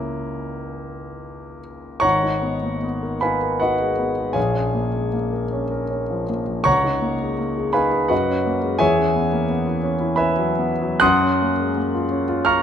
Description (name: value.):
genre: classical, impressionist solo piano.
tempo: 67-90 BPM.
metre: 3/4.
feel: rubato.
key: G# minor.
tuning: A4 = 440 Hz.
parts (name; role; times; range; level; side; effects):
warm concert grand piano; solo; 0.0-12.6 s; G#1 to Gb6; -19 LUFS; equal; none.
room: moderate recital hall reverb, RT60 1.6 s.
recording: close, detailed microphones.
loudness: -18 LUFS.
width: side -8 dB against mid.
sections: 0.0-2.0 A section; 2.0-12.6 B section.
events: none.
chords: 0.0 C#m6; 2.0 G#madd9; 4.4 A#m7; 6.7 C#69; 8.1 F#add9; 8.8 E69; 11.0 Gbmaj7.